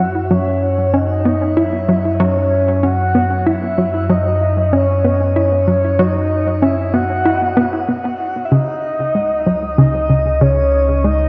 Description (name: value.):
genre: ambient, sequencer-driven space music.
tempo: 95 BPM.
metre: 4/4.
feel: straight.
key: unclear.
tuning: A4 = 440 Hz.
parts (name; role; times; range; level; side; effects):
soft octave-layered synth lead; melody; 0.0-11.3 s; C#5 to F#5; -20 LUFS; equal; chorus, phaser, shimmer reverb, analog delay.
hollow square pluck; riff; 0.0-11.2 s; C#3 to E4; -20 LUFS; equal; chorus, analog delay.
analog drone; bass; 0.0-11.3 s; C#2 to F#2; -21 LUFS; equal; chorus.
room: wet spring reverb, RT60 2.5 s.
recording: echo-heavy mix.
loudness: -16 LUFS.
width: mono.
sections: 0.0-11.3 A section.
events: none.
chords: 0.0 F#5; 8.5 C#sus2.